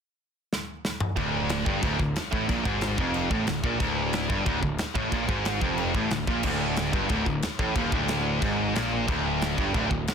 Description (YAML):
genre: heavy metal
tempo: 182 BPM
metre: 4/4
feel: straight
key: D minor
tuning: A4 = 436 Hz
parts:
  - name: modern studio drum kit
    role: drums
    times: 0.5-10.1 s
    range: china cymbal, crash cymbal, kick drum, snare drum, toms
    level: -30 LUFS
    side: equal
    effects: soft clipping on snare
  - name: high-gain distorted guitar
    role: riff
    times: 1.2-10.0 s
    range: D2 to Bb2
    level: -30 LUFS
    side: right 11 dB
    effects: distortion
  - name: scooped high-gain guitar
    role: riff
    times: 1.2-10.0 s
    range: D2 to Bb2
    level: -30 LUFS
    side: left 11 dB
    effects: distortion
  - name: thick fuzz guitar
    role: riff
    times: 1.2-10.0 s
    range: D2 to Bb2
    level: -33 LUFS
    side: equal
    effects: distortion
  - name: fuzz picked electric bass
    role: bass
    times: 1.2-10.1 s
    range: D1 to Bb1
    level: -33 LUFS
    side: equal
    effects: overdrive
room: light reverb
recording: dense, heavily limited modern master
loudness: -24 LUFS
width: side -7 dB against mid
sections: 0.0-1.2 A section; 1.2-10.1 B section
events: drum fill 0.5-1.2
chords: 0.0 N.C.; 1.2 Dm